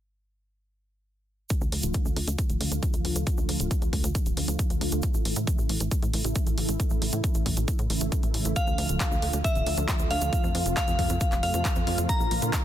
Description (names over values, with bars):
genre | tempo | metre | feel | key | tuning
uplifting trance | 136 BPM | 4/4 | straight | D minor | A4 = 439 Hz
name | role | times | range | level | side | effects
analog string pad | sustained chords | 1.5-12.6 s | C3 to F4 | -32 LUFS | right 1 dB | ensemble chorus, sidechain pumping
electronic kick drum | drums | 1.5-12.6 s | none | -27 LUFS | equal | overdrive
punchy analog drum machine | drums | 1.5-12.6 s | handclaps, hi-hat | -33 LUFS | equal | sidechain pumping on hats
egg shaker | percussion | 1.5-12.6 s | none | -38 LUFS | right 4 dB | none
tight sequencer bass | bass | 1.6-12.5 s | D1 to Bb2 | -29 LUFS | equal | sidechain pumping
glassy synth bell | second line | 8.6-12.6 s | E5 to Bb5 | -29 LUFS | equal | chorus, ping-pong delay
room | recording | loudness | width
light reverb | dense, heavily limited modern master | -24 LUFS | side -11 dB against mid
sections
1.5-12.6 A section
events
filter sweep on analog synth pad 1.5-12.6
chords
1.5 Dm; 5.0 A; 8.6 Dm; 10.3 F; 12.1 Bb